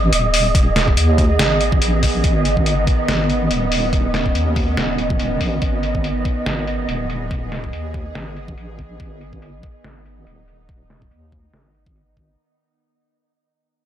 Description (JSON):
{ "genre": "deep dubstep", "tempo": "142 BPM", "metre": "4/4", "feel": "swing 56% on 16ths, half-time", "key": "G# phrygian", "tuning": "A4 = 436 Hz", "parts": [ { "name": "bowed-like drone", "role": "sustained chords", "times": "0.0-12.4 s", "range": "D#3 to G#4", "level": "-25 LUFS", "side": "right 2 dB", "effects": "built-in reverb" }, { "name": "deep soft wobble bass", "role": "bass", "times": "0.0-12.4 s", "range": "D#1 to D#2", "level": "-21 LUFS", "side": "equal", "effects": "chorus" }, { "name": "wind-like tuned noise texture", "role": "texture", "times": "0.0-12.4 s", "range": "D#5", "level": "-24 LUFS", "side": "right 3 dB", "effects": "built-in reverb" }, { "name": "trip hop sampler-style drum kit", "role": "drums", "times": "0.1-12.3 s", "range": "hi-hat, snare drum", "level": "-23 LUFS", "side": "left 1 dB", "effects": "low-pass filter on hats, low-pass filter on snare, low-pass filter on cymbals, low-pass filter on room" }, { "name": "electronic kick drum", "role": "drums", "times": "0.5-12.3 s", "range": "none", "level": "-20 LUFS", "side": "equal", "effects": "none" } ], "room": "light reverb", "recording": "none", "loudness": "-16 LUFS", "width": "side -10 dB against mid", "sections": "0.0-12.4 A section", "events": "fade-out 0.0-12.4; filter sweep on drum 0.0-12.4", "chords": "0.0 G#m" }